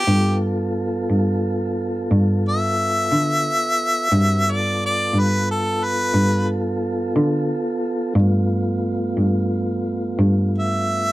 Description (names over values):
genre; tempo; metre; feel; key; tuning
slow blues; 59 BPM (dotted quarters); 12/8; straight; G mixolydian; A4 = 441 Hz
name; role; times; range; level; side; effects
clear harmonica; melody; 0.0-11.1 s; G4 to E5; -20 LUFS; equal; none
mellow tonewheel organ; sustained chords; 0.0-11.1 s; A3 to Bb4; -24 LUFS; right 1 dB; slow rotary speaker
dark cello; bass; 0.1-11.1 s; G2 to D3; -20 LUFS; equal; none
room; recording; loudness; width
light reverb; dark, warm production; -18 LUFS; side -17 dB against mid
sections
0.0-11.1 A section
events
none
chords
0.0 G9